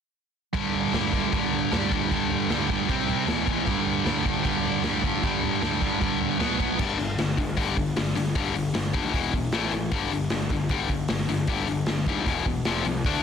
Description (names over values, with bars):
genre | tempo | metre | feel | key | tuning
punk rock | 154 BPM | 4/4 | straight | G major | A4 = 440 Hz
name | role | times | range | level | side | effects
distorted electric guitar | riff | 0.5-13.2 s | E2 to D4 | -26 LUFS | left 7 dB | overdrive
sludgy distorted guitar | riff | 0.5-6.8 s | E2 to C4 | -27 LUFS | right 14 dB | overdrive
raw garage drum kit | drums | 0.5-13.1 s | crash cymbal, hi-hat, kick drum, snare drum, toms | -28 LUFS | right 1 dB | none
fuzz picked electric bass | bass | 6.8-13.2 s | E1 to Eb2 | -31 LUFS | right 1 dB | overdrive
room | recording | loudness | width
light reverb | dense, heavily limited modern master | -23 LUFS | side -7 dB against mid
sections
0.5-6.8 A section; 6.8-13.2 B section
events
none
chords
0.5 G5; 2.9 C5; 3.3 E5; 3.7 G5; 6.4 B5; 6.8 G5; 9.1 E5; 9.5 A5; 9.9 G5; 12.3 E5; 12.6 F5